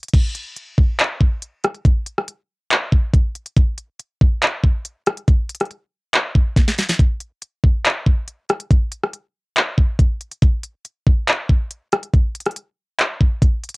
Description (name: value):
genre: hip hop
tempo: 140 BPM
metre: 4/4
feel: half-time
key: none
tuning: none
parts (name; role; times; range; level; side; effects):
- trap drum kit; drums; 0.0-13.8 s; crash cymbal, handclaps, hi-hat, kick drum, rim click, snare drum; -15 LUFS; equal; none
room: light reverb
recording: home recording on cassette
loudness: -17 LUFS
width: side -26 dB against mid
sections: 0.1-13.8 A section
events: drum fill 6.6-7.0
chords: none